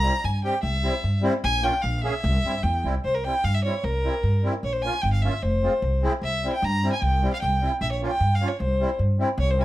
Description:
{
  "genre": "klezmer",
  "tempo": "151 BPM",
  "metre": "2/4",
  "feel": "straight",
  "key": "C phrygian dominant",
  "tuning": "A4 = 443 Hz",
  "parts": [
    { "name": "rich violin", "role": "melody", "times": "0.0-9.6 s", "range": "Bb4 to Bb5", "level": "-26 LUFS", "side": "equal", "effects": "none" },
    { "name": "musette accordion", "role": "accompaniment", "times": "0.0-9.6 s", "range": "G3 to Ab4", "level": "-28 LUFS", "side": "equal", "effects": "none" },
    { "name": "upright bass", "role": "bass", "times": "0.0-9.6 s", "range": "F1 to G2", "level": "-24 LUFS", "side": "equal", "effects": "none" }
  ],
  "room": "moderate studio reverb, RT60 0.6 s",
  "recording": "none",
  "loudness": "-21 LUFS",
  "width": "side -15 dB against mid",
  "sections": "0.0-3.0 A section; 3.0-9.4 B section",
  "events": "violin solo 0.0-3.0",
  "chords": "0.0 C; 1.4 Bbm; 2.2 C; 4.6 Bbm; 5.4 Fm; 6.2 C; 7.8 Bbm; 8.6 C"
}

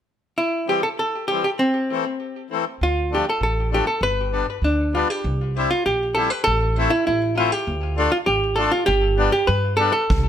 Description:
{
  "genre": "alpine folk, alpine dance band",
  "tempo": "99 BPM",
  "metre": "2/4",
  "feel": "straight",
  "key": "C major",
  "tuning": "A4 = 444 Hz",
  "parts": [
    { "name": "archtop guitar, miked and amplified", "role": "melody", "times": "0.4-10.3 s", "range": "C4 to B4", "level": "-21 LUFS", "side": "equal", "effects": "plate reverb, ping-pong delay" },
    { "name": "accordion", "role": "accompaniment", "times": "0.7-9.9 s", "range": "E3 to F4", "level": "-23 LUFS", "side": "left 5 dB", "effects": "none" },
    { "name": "upright bass", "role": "bass", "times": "2.8-10.3 s", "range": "G1 to G2", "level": "-24 LUFS", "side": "right 1 dB", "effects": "none" },
    { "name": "kick drum", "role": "drums", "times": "10.1-10.2 s", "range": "none", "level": "-19 LUFS", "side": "equal", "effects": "none" }
  ],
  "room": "light reverb",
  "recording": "none",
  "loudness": "-18 LUFS",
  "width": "side -9 dB against mid",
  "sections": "0.4-5.3 A section; 5.3-10.3 B section",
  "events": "none",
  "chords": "0.4 C; 1.6 Am; 2.8 Dm; 4.0 G; 5.3 C; 6.5 Am; 7.7 Dm; 8.9 G"
}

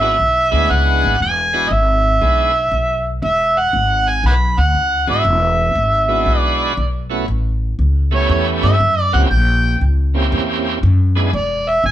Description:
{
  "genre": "electric blues shuffle",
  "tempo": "118 BPM",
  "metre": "4/4",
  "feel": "swing 66% on 8ths",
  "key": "E mixolydian",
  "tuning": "A4 = 438 Hz",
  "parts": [
    { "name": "overdriven harmonica", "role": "melody", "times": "0.0-11.9 s", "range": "C#5 to B5", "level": "-16 LUFS", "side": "right 1 dB", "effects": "none" },
    { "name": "bright tonewheel organ", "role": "accompaniment", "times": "0.0-11.3 s", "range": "G#3 to G#4", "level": "-21 LUFS", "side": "right 3 dB", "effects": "slow rotary speaker, overdrive" },
    { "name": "upright bass", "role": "bass", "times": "0.0-11.9 s", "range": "E1 to G2", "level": "-17 LUFS", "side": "equal", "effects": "none" }
  ],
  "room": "light reverb",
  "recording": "band playing live in one room, nothing above 10.6 kHz",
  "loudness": "-13 LUFS",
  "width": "side -12 dB against mid",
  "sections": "0.0-11.9 A section",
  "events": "none",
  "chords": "0.0 E7; 7.3 A7; 9.3 A#dim7; 11.3 E7"
}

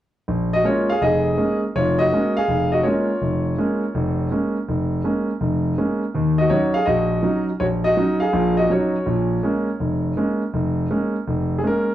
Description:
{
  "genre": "solo jazz",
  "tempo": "164 BPM",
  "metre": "4/4",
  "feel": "swing 65% on 8ths",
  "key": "Bb minor",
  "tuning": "A4 = 441 Hz",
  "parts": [
    { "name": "warm concert grand piano", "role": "solo", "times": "0.3-11.9 s", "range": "F1 to F5", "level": "-18 LUFS", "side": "equal", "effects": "none" }
  ],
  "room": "moderate studio reverb, RT60 0.8 s",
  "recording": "worn, warbling old tape, cassette tape, warbly pitch drift",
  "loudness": "-18 LUFS",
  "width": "side -12 dB against mid",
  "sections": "0.3-11.9 A section",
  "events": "none",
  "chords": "0.3 Bbm7; 6.1 Ebm7; 9.1 Bbm7"
}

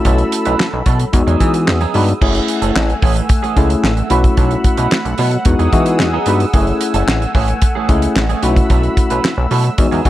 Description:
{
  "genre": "early-eighties boogie funk",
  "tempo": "111 BPM",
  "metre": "4/4",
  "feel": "straight",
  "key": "F# dorian",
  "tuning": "A4 = 440 Hz",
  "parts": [
    { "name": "tine electric piano", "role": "accompaniment", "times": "0.0-10.1 s", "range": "G#3 to G#5", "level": "-18 LUFS", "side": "left 3 dB", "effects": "none" },
    { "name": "brassy analog pad", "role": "sustained chords", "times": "0.0-10.1 s", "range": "A3 to E6", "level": "-22 LUFS", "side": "equal", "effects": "chorus" },
    { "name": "damped 70s drum kit", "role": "drums", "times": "0.0-10.1 s", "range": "crash cymbal, handclaps, hi-hat, kick drum, snare drum", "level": "-16 LUFS", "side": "equal", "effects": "none" },
    { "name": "clean electric guitar", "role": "riff", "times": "0.1-10.1 s", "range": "E3 to B4", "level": "-23 LUFS", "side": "right 8 dB", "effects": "analog chorus" },
    { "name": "chorused synth bass", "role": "bass", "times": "0.1-10.1 s", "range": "F#1 to E3", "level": "-16 LUFS", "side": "equal", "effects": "none" }
  ],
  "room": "small room ambience",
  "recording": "none",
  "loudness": "-12 LUFS",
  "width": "side -14 dB against mid",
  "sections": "0.0-2.2 A section; 2.2-10.1 B section",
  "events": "tine electric piano fill 9.8-10.1",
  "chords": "0.0 B7sus4; 1.1 Emaj9; 2.2 F#m9; 4.1 B7sus4; 5.5 Emaj9; 6.5 F#m9; 8.4 B7sus4"
}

